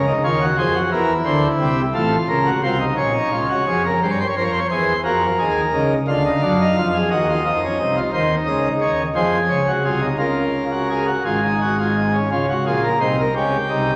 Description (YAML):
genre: classical, baroque-style 3-part fugue for pipe organ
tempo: 58 BPM (dotted quarters)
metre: 6/8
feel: straight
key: Bb minor, Db major from 8.1 s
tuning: A4 = 440 Hz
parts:
  - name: pipe organ, principal chorus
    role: solo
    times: 0.0-14.0 s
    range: Ab1 to F5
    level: -19 LUFS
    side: equal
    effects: none
room: wet recital hall reverb, RT60 1.7 s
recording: none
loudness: -19 LUFS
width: mono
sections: 0.0-4.0 A section; 4.0-12.3 B section; 12.3-14.0 C section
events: none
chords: 0.0 Bbm/Db; 0.9 C7; 1.9 F/A; 3.0 Bbm; 4.0 C7; 5.1 Fm; 6.1 Ddim; 7.1 Ebm; 8.1 Dbsus2; 9.2 Db; 11.3 Ab5; 12.3 Db; 13.4 Eb7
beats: 0.92 | 1.94 2.97 | 4.01 5.06 | 6.09 7.12 | 8.14 9.16 | 10.20 11.25 | 12.31 13.36